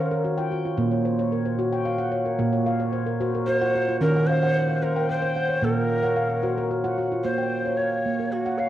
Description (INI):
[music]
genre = world meditative, meditative tuned percussion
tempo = 112 BPM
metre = 3/4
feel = straight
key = Bb minor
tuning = A4 = 439 Hz
[part]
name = breathy mellow Native American-style cedar flute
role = melody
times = 0.0-0.2, 3.5-8.7 s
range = Gb4 to F5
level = -25 LUFS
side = equal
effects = cassette tape
[part]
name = handpan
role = arpeggios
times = 0.0-8.7 s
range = Bb2 to G5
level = -23 LUFS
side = equal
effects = cassette tape
[sound]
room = wet spring reverb, RT60 1.7 s, studio ambience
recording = home recording on cassette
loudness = -21 LUFS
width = side -12 dB against mid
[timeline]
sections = 0.0-7.2 A section; 7.2-8.7 B section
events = handpan fill 0.0-0.8, 2.5-4.0, 6.0-7.2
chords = 0.0 Ebm; 0.8 Bbm; 4.0 Ebm; 5.6 Bbm